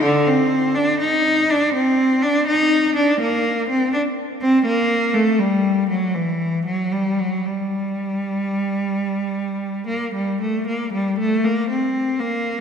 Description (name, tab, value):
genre	classical, baroque-style suite movement for unaccompanied cello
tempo	73-83 BPM (dotted quarters)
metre	12/8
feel	rubato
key	G minor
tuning	A4 = 440 Hz
part	rich cello	solo	0.0-12.6 s	D3 to Eb4	-17 LUFS	equal	none
room	wet church reverb, RT60 2.9 s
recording	minimal, uncompressed stereo recording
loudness	-17 LUFS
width	side -7 dB against mid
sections	0.0-10.7 A section; 10.7-12.6 B section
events	none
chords	none